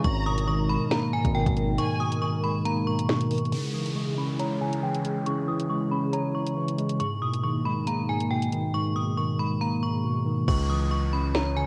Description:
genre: hip hop, drill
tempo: 138 BPM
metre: 4/4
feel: half-time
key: unclear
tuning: A4 = 440 Hz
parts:
  - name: metallic FM bell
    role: melody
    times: 0.0-11.7 s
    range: G5 to D#6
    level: -34 LUFS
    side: equal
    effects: chorus, low-pass filter
  - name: warm studio violin section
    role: second line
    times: 0.0-2.2 s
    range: G#5 to A#5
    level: -40 LUFS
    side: equal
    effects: cassette tape, tape echo
  - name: mellow tine electric piano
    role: accompaniment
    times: 0.0-11.7 s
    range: G#2 to C#5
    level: -30 LUFS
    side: equal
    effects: low-pass filter, cassette tape
  - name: airy breathy pad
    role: sustained chords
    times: 0.0-10.4 s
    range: B2 to A#4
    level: -36 LUFS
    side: equal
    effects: chorus, low-pass filter, cassette tape
  - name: distorted 808-style bass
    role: bass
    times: 0.0-1.8, 10.5-11.6 s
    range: G#1 to C#2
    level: -29 LUFS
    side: equal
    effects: distortion
  - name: drill drum kit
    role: drums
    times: 0.0-11.5 s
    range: crash cymbal, hi-hat, kick drum, snare drum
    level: -32 LUFS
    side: equal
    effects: cassette tape
  - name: downlifter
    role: sound effects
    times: 3.5-7.0, 10.5-11.7 s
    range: none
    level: -44 LUFS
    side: equal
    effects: none
room: light reverb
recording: home recording on cassette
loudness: -27 LUFS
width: mono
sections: 0.0-3.5 A section; 3.5-10.5 B section; 10.5-11.7 C section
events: kick muted 1.8-3.5; filter sweep 3.5-10.5; hi-hats muted 10.5-11.7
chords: 0.0 G#madd9; 3.5 C#m; 7.0 G#madd9; 10.5 C#m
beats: | 0.04 0.48 0.92 1.35 | 1.78 2.22 2.65 3.09 | 3.52 3.96 4.39 4.83 | 5.26 5.70 6.13 6.57 | 7.00 7.44 7.87 8.31 | 8.74 9.18 9.61 10.04 | 10.48 10.91 11.35

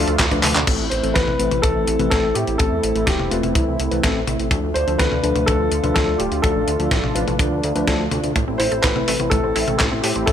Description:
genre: italo disco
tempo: 125 BPM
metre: 4/4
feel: straight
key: A minor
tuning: A4 = 440 Hz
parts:
  - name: dark concert grand piano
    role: melody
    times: 0.0-10.3 s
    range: D4 to C5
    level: -23 LUFS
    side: left 1 dB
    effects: ping-pong delay
  - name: warm analog pad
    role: sustained chords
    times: 0.0-10.3 s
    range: A3 to F4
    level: -25 LUFS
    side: right 2 dB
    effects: chorus
  - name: wide unison pluck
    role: arpeggios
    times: 0.0-0.6, 8.4-10.3 s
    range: A3 to A4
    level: -28 LUFS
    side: right 4 dB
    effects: digital delay
  - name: tine electric piano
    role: stabs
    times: 0.0-8.0 s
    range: E3 to B4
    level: -26 LUFS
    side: left 4 dB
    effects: overdrive
  - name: chorused synth bass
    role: bass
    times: 0.0-10.3 s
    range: D1 to A2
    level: -24 LUFS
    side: equal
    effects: none
  - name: dusty soul sampler-style drum kit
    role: drums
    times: 0.1-10.3 s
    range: crash cymbal, handclaps, hi-hat, snare drum, toms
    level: -23 LUFS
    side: left 1 dB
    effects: none
  - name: kick drum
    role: drums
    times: 0.2-10.3 s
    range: none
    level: -21 LUFS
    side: equal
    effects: none
room: light reverb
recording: none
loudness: -17 LUFS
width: side -9 dB against mid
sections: 0.7-10.3 A section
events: drum fill 0.4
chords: 0.0 Dm; 0.7 Am; 4.5 Dm; 8.4 Am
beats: 0.20 | 0.68 1.16 1.64 2.12 | 2.60 3.08 3.56 4.04 | 4.52 5.00 5.48 5.96 | 6.44 6.92 7.40 7.88 | 8.36 8.84 9.32 9.80 | 10.28

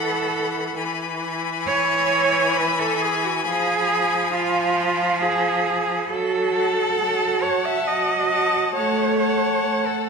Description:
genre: classical, slow romantic movement for string quartet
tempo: 68 BPM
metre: 3/4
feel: rubato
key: unclear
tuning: A4 = 440 Hz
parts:
  - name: rich violin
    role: melody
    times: 0.0-10.1 s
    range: A5 to B5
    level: -28 LUFS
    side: left 9 dB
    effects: none
  - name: warm violin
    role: second line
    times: 0.0-10.1 s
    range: F#5 to G#5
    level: -29 LUFS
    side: left 5 dB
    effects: none
  - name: rich viola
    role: accompaniment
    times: 0.0-10.1 s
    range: E3 to A3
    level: -24 LUFS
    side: right 1 dB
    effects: none
  - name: rich cello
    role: bass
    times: 0.0-10.1 s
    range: F4 to E5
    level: -22 LUFS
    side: right 3 dB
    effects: none
room: wet scoring stage reverb, RT60 1.6 s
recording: minimal, uncompressed stereo recording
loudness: -19 LUFS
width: side -5 dB against mid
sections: 0.0-10.1 A section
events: none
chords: 0.0 B5/E; 0.8 E; 3.5 Fdim; 6.1 F#m; 8.7 F#m/A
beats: | 0.76 1.67 2.56 | 3.46 4.33 5.21 | 6.09 6.98 7.86 | 8.74 9.63

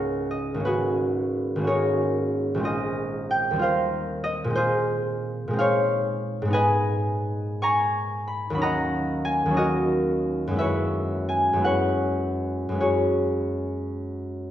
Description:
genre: classical, solo harp piece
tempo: 50-64 BPM (dotted quarters)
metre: 6/8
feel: rubato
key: unclear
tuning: A4 = 439 Hz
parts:
  - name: concert harp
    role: solo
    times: 0.0-14.5 s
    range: G#1 to C#6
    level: -22 LUFS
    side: equal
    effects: none
room: wet recital hall reverb, RT60 1.6 s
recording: heard from further back in the room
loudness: -22 LUFS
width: side -11 dB against mid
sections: 0.0-14.5 A section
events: none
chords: 0.0 C#69; 0.7 G#m11; 2.6 A#m9; 3.6 D#69; 4.5 A#m11; 6.5 G#madd9; 10.6 F#9sus4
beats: | 0.66 1.66 | 2.64 3.61 | 4.55 5.57 | 6.53 7.63 | 8.62 9.58 | 10.59 11.64 | 12.79 13.91

